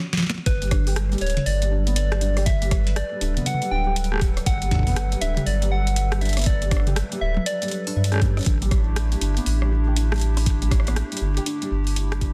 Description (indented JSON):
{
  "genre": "IDM",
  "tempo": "120 BPM",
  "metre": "4/4",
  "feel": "swing 62% on 16ths",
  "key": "G major",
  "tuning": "A4 = 441 Hz",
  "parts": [
    { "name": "booming analog drum machine", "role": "drums", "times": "0.1-12.3 s", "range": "hi-hat, rim click, snare drum, toms", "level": "-30 LUFS", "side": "equal", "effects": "studio reverb, soft clipping on snare" },
    { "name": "soft struck synth lead", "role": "melody", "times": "0.5-8.2 s", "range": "B4 to G5", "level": "-32 LUFS", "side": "equal", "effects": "chorus, vintage 12-bit sampler grit, tape echo" },
    { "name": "warbly tape-like pad", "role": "sustained chords", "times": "0.5-12.3 s", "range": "F#3 to B4", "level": "-35 LUFS", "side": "equal", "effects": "chorus, built-in reverb" },
    { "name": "warm sub bass", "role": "bass", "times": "0.5-12.3 s", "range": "D1 to G2", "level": "-25 LUFS", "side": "equal", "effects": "none" },
    { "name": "electronic kick drum", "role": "drums", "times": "0.5-12.3 s", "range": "none", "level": "-24 LUFS", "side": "equal", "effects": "studio reverb" },
    { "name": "felt-muted upright piano", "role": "arpeggios", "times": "0.6-12.3 s", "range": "D3 to G4", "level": "-35 LUFS", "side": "equal", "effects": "dub echo" }
  ],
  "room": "digital ambience",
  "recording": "dense, heavily limited modern master",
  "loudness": "-22 LUFS",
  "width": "mono",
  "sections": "0.5-12.3 A section",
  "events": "drum fill 0.0-0.5; stop 0.0-0.5; fade-out 11.1-12.3",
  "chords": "0.5 Gmaj9; 8.5 A7sus4"
}